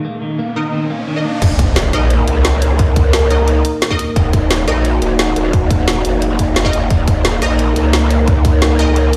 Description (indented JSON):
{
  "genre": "dark technical drum and bass",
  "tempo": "175 BPM",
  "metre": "4/4",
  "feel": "straight",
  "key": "Eb minor",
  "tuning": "A4 = 436 Hz",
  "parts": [
    { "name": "dark analog pad", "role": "sustained chords", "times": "0.0-9.2 s", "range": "Bb3 to Bb4", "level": "-22 LUFS", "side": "equal", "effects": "chorus, phaser, sidechain pumping" },
    { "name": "electric guitar at the edge of break-up", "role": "arpeggios", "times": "0.0-1.4 s", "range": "Eb3 to Bb3", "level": "-24 LUFS", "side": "equal", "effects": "sidechain pumping, dub echo" },
    { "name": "riser and impact", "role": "sound effects", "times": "0.0-2.8 s", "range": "none", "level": "-23 LUFS", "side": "equal", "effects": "none" },
    { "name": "filtered dub chord stab", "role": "stabs", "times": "0.6-9.2 s", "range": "Eb4 to Eb5", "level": "-26 LUFS", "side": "equal", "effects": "phaser, ensemble chorus, dub echo" },
    { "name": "growl bass", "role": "bass", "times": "1.4-9.1 s", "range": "Eb1 to Db2", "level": "-17 LUFS", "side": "equal", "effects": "chorus, overdrive, sidechain pumping" },
    { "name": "drum and bass drum kit", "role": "drums", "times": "1.4-9.2 s", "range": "crash cymbal, hi-hat, rim click, snare drum", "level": "-21 LUFS", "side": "equal", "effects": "none" },
    { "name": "electronic kick drum", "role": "drums", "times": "1.4-8.5 s", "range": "none", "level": "-16 LUFS", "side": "equal", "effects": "none" }
  ],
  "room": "light reverb, digital ambience",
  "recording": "played on a big sound system in a bare room, large studio reverb",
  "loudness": "-14 LUFS",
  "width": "mono",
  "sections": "0.0-1.4 A section; 1.4-9.2 B section",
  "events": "riser 0.0-1.4; drop 1.4-9.2; impact 1.4-2.8",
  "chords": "0.0 Eb5",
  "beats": "| 0.05 0.39 0.73 1.08 | 1.42 1.76 2.10 2.45 | 2.79 3.13 3.48 3.82 | 4.16 4.50 4.85 5.19 | 5.53 5.88 6.22 6.56 | 6.91 7.25 7.59 7.93 | 8.28 8.62 8.96"
}